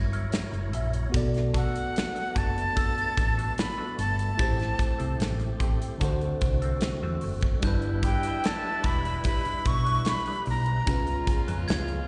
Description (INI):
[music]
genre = lush 1970s-style soul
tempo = 74 BPM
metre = 4/4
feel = straight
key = unclear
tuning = A4 = 440 Hz
[part]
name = mellow tine electric piano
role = accompaniment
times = 0.0-12.1 s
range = C#3 to E5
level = -37 LUFS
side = equal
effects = phaser, slapback echo
[part]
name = tonewheel organ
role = sustained chords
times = 0.0-12.1 s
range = C#3 to C#5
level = -42 LUFS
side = equal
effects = slow rotary speaker, overdrive, chorus vibrato
[part]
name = hollow-body short-scale fingered electric bass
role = bass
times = 0.0-12.0 s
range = E1 to E#2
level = -30 LUFS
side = equal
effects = none
[part]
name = glockenspiel with hard plastic mallets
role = texture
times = 0.0-12.1 s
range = E6 to A#6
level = -46 LUFS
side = equal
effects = none
[part]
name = electric guitar through a small old amp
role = riff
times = 0.1-11.9 s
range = C4 to E5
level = -44 LUFS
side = equal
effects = wah, subtle chorus, slapback echo
[part]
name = modern studio drum kit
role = drums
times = 0.1-12.1 s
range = hi-hat, kick drum, snare drum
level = -31 LUFS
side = equal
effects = none
[part]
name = breathy bright jazz flute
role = melody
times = 1.6-11.7 s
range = F#5 to C#6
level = -32 LUFS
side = equal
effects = slapback echo
[part]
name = warm horn section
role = stabs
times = 7.6-12.1 s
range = B2 to E#4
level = -39 LUFS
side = equal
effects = slapback echo
[sound]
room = small room ambience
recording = live gig heard through the venue's PA, recital hall reverb, nothing above 10.5 kHz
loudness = -27 LUFS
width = mono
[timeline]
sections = 0.0-12.1 A section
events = none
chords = 0.0 F#7; 1.1 Bm7; 4.4 Am7; 6.0 D7; 7.6 G6; 10.9 C#7